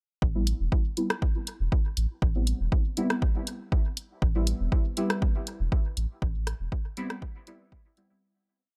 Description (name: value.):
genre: dub techno.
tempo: 120 BPM.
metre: 4/4.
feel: straight.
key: A minor.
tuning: A4 = 439 Hz.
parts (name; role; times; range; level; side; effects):
soft dub sub bass; bass; 0.2-6.7 s; E1 to A1; -30 LUFS; equal; sidechain pumping.
electronic kick drum; drums; 0.2-7.8 s; none; -28 LUFS; equal; none.
deep mellow chord stab; stabs; 0.4-8.2 s; G3 to E4; -35 LUFS; equal; chorus, phaser, sidechain pumping, dub echo.
punchy analog drum machine; drums; 0.5-8.1 s; hi-hat, rim click; -34 LUFS; equal; dub echo.
room: little or no reverb.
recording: dark, warm production.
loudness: -28 LUFS.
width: mono.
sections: 0.2-8.2 groove.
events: fade-out 5.6-8.2.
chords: 0.2 Am7.